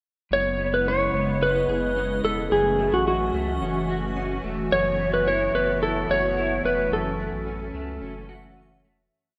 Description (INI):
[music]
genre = dream pop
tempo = 109 BPM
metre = 4/4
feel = straight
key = F# dorian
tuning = A4 = 439 Hz
[part]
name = clean lap steel guitar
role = melody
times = 0.3-8.8 s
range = F#4 to C#5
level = -25 LUFS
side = equal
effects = shimmer reverb, digital delay
[part]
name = hollow soft pad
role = sustained chords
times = 0.4-9.1 s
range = C#3 to F#4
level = -32 LUFS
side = equal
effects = ensemble chorus, shimmer reverb
[part]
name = clean electric guitar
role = arpeggios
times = 0.3-9.4 s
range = F#2 to G#4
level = -35 LUFS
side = equal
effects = analog chorus, shimmer reverb, digital delay
[part]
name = saturated sub bass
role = bass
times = 0.3-9.1 s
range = E1 to C#2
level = -35 LUFS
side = equal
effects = none
[part]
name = backwards swelling texture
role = texture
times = 1.3-2.7, 8.3-9.4 s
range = C#5 to F#5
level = -46 LUFS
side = equal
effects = built-in reverb, shimmer reverb, digital delay
[sound]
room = wet lush hall reverb, RT60 2.4 s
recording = rough home demo mix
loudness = -24 LUFS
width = mono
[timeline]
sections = 0.3-9.1 verse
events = fade-out 6.9-9.1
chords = 0.3 E6/F#; 2.5 F#m7; 4.7 B7sus4/F#; 6.9 F#m7